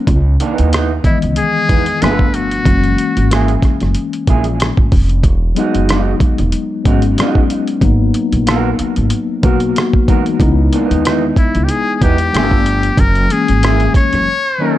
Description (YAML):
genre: R&B, neo-soul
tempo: 93 BPM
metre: 4/4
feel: swing 55% on 16ths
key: C# dorian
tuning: A4 = 438 Hz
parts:
  - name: mellow tine electric piano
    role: accompaniment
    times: 0.0-14.8 s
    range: D#3 to D#5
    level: -17 LUFS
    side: left 4 dB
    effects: medium stereo tremolo, plate reverb
  - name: upright bass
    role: bass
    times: 0.1-14.3 s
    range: E1 to E2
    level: -15 LUFS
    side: equal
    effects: none
  - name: dusty soul sampler-style drum kit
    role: drums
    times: 0.1-14.3 s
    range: hi-hat, kick drum, rim click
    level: -14 LUFS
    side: equal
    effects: none
  - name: electric guitar through a small old amp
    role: second line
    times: 0.4-14.7 s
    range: E3 to A#4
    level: -21 LUFS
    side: right 6 dB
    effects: plate reverb, tape echo
  - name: trumpet with metal mute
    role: melody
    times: 1.1-3.6, 11.4-14.8 s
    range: E4 to C#5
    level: -17 LUFS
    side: left 2 dB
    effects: plate reverb
room: light reverb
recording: dark, warm production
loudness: -11 LUFS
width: side -14 dB against mid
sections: 0.0-14.8 A section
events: break 14.3-14.8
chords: 0.1 C#m9; 2.0 G9; 2.7 F#9; 5.2 Emaj9; 7.8 G#m9; 10.4 C#m9; 12.3 G9; 13.0 F#9; 14.3 D#m7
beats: | 0.07 0.72 1.36 2.01 | 2.65 3.30 3.94 4.59 | 5.23 5.88 6.52 7.17 | 7.81 8.46 9.11 9.75 | 10.39 11.04 11.69 12.33 | 12.98 13.62 14.27